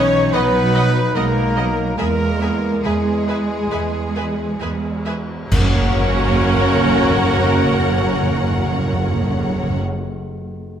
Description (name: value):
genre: cinematic, epic orchestral film score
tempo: 65-75 BPM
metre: 4/4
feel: straight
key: F# mixolydian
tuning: A4 = 440 Hz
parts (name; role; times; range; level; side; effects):
- warm symphonic violin section; melody; 0.0-9.8 s; G#4 to F#5; -29 LUFS; left 6 dB; none
- mellow large flute ensemble; second line; 0.0-9.8 s; G#4 to F#5; -30 LUFS; left 1 dB; none
- warm symphonic violin section; second line; 0.0-9.8 s; C#5 to G#5; -28 LUFS; left 2 dB; none
- rich studio viola section; accompaniment; 0.0-9.8 s; B3 to D#5; -24 LUFS; right 1 dB; none
- clear trombone section; sustained chords; 0.0-9.8 s; C#3 to D#4; -25 LUFS; right 2 dB; none
- mellow French horn section; sustained chords; 0.0-9.8 s; G#3 to F#4; -25 LUFS; left 4 dB; none
- warm trumpet; stabs; 0.0-9.8 s; F#4 to C#5; -26 LUFS; right 1 dB; none
- rich symphonic double bass section; bass; 0.0-9.8 s; F#1 to E2; -24 LUFS; right 2 dB; none
- warm symphonic cello section; bass; 0.0-9.8 s; F#2 to G#3; -23 LUFS; right 2 dB; none
- cymbal swell, clash cymbals and concert bass drum; percussion; 2.0-7.3 s; none; -24 LUFS; equal; none
- timpani; percussion; 5.5-9.8 s; F#2; -22 LUFS; equal; none
- impact; sound effects; 5.5-9.8 s; none; barely audible; none; none
room: wet scoring stage reverb, RT60 1.9 s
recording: none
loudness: -15 LUFS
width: side -9 dB against mid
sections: 0.0-5.5 A section; 5.5-9.2 B section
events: slowing down 0.0-5.5; band accent 5.5-6.4; impact 5.5-9.2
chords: 0.0 B; 2.0 E; 5.5 F#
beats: 0.34 1.16 | 1.99 2.85 3.72 4.61 | 5.52 6.43 7.35 8.27